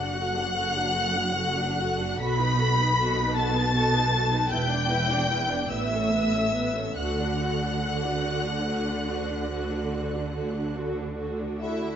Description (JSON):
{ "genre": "classical, slow romantic movement for string orchestra", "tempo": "46-53 BPM (dotted quarters)", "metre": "12/8", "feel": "rubato", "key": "D major", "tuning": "A4 = 439 Hz", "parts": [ { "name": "rich symphonic violin section", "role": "melody", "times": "0.0-12.0 s", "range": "E5 to B6", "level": "-31 LUFS", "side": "left 2 dB", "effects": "none" }, { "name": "rich symphonic violin section", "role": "second line", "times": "0.0-12.0 s", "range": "E4 to B5", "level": "-29 LUFS", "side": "left 2 dB", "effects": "none" }, { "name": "warm symphonic viola section", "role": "accompaniment", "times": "0.0-12.0 s", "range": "B3 to D5", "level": "-31 LUFS", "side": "equal", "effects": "none" }, { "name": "clear symphonic double bass section", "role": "bass", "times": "0.0-11.8 s", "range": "E1 to D2", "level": "-30 LUFS", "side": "right 1 dB", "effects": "none" }, { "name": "warm symphonic cello section", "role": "bass", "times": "0.0-11.8 s", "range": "E2 to D3", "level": "-31 LUFS", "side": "right 2 dB", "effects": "none" } ], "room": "moderate scoring stage reverb, RT60 1.5 s", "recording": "nothing above 7.8 kHz", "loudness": "-24 LUFS", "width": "side -9 dB against mid", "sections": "0.0-12.0 A section", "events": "none", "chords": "0.0 D/F#; 2.2 B7; 4.5 Em7; 5.7 Aadd9; 7.0 D" }